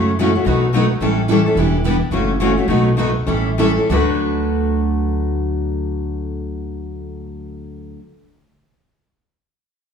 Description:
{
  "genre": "acoustic string swing (jazz manouche)",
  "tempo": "186-218 BPM",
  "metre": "4/4",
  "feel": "swing 58% on 8ths",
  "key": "D major",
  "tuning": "A4 = 439 Hz",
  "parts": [
    { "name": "picked steel-string acoustic guitar", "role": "accompaniment", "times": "0.0-8.0 s", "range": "B2 to B4", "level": "-19 LUFS", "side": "left 3 dB", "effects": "none" },
    { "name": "picked steel-string acoustic guitar", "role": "accompaniment", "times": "0.0-8.0 s", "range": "B2 to B4", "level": "-23 LUFS", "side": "right 5 dB", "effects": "none" },
    { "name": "upright bass", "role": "bass", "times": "0.0-7.9 s", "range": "E1 to F#2", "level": "-22 LUFS", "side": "equal", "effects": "none" }
  ],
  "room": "wet large studio reverb, RT60 1.2 s",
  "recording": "band playing live in one room",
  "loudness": "-15 LUFS",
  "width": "side -6 dB against mid",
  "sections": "0.0-3.9 A section; 3.9-6.5 B section",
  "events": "slowing down 1.6-3.9",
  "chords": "0.5 B7; 1.0 A7; 1.6 Em7; 2.1 F#m7; 2.7 B7; 3.3 A7; 3.9 D6"
}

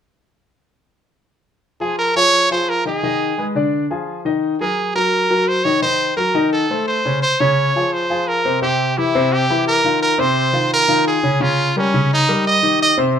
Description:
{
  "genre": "jazz",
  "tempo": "172 BPM",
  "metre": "4/4",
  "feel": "straight",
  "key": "Bb dorian from 7.2 s",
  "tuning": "A4 = 440 Hz",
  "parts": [
    { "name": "brilliant trumpet", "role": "melody", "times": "1.8-13.0 s", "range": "Db4 to Eb5", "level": "-16 LUFS", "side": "right 2 dB", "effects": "none" },
    { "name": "clear grand piano", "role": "accompaniment", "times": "1.8-13.2 s", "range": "C3 to Eb5", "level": "-18 LUFS", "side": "left 2 dB", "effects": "none" }
  ],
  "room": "wet studio reverb, RT60 0.7 s",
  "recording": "minimal, uncompressed stereo recording",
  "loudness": "-15 LUFS",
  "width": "side -8 dB against mid",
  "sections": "1.6-7.2 A section; 7.2-13.2 B section",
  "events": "none",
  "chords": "1.6 Eb9sus4; 3.0 Abm; 3.7 Ddim; 4.4 Ebm; 6.5 Adim; 7.2 Bbm9; 8.6 C7; 10.0 Fm7; 11.4 Eb7"
}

